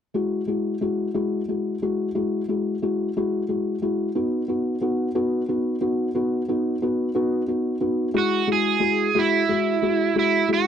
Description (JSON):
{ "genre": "pop", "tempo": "60 BPM (dotted quarters)", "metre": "6/8", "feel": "straight", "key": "E major", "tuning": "A4 = 440 Hz", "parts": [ { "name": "felt-muted upright piano", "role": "accompaniment", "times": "0.1-10.7 s", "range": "G#3 to F#4", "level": "-22 LUFS", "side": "left 1 dB", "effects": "none" }, { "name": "overdriven slide guitar", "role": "melody", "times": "8.2-10.7 s", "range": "E4 to G#4", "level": "-21 LUFS", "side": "right 7 dB", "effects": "none" } ], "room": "moderate booth ambience, RT60 0.2 s", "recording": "dry, close 1970s-style studio recording", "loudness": "-21 LUFS", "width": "side -8 dB against mid", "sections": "0.1-8.2 A section; 8.2-10.7 B section", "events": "none", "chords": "0.1 Eadd9; 4.1 B; 8.2 Eadd9" }